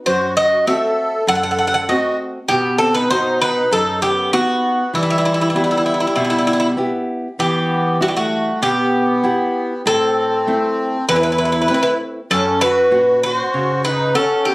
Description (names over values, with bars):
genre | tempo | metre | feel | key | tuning
greek folk, Greek bouzouki band | 98 BPM | 4/4 | straight | E harmonic minor | A4 = 440 Hz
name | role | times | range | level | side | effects
Greek bouzouki | melody | 0.1-14.5 s | E4 to F#5 | -16 LUFS | equal | none
musette accordion | second line | 0.1-14.5 s | G3 to A4 | -22 LUFS | equal | none
nylon-string guitar | accompaniment | 0.1-14.5 s | E2 to F#5 | -21 LUFS | equal | none
room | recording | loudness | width
moderate studio reverb, RT60 0.6 s | recorded on a phone in the room, studio reverb | -14 LUFS | side -22 dB against mid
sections
0.0-7.4 A section; 7.4-14.5 B section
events
none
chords
0.1 F#dim; 2.5 B; 4.9 Em; 7.4 Emadd9; 9.9 Am; 12.3 F#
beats
| 0.05 0.66 1.28 1.89 | 2.50 3.11 3.72 4.33 | 4.95 5.56 6.17 6.79 | 7.40 8.01 8.63 9.24 | 9.85 10.47 11.08 11.70 | 12.31 12.93 13.54 14.15